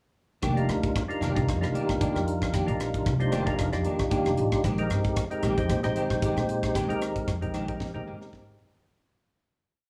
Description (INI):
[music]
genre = electric jazz fusion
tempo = 114 BPM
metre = 4/4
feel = swing 55% on 16ths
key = F minor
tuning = A4 = 439 Hz
[part]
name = clean electric guitar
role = stabs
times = 0.4-8.8 s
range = Eb3 to G4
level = -35 LUFS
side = equal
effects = ensemble chorus
[part]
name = upright bass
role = bass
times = 0.4-8.8 s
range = F1 to Bb2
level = -32 LUFS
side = equal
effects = none
[part]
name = crisp fusion drum kit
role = drums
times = 0.4-8.8 s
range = hi-hat, kick drum, rim click, snare drum, toms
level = -34 LUFS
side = equal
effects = none
[part]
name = percussive tonewheel organ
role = accompaniment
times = 0.6-8.9 s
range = G3 to C5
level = -31 LUFS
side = equal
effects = slow rotary speaker, chorus vibrato
[sound]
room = moderate studio reverb, RT60 0.6 s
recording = studio ambience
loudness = -27 LUFS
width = mono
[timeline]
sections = 0.4-8.9 groove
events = fade-out 6.7-8.9; drum fill 7.8-8.9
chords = 0.4 F13sus4; 4.6 Bb13sus4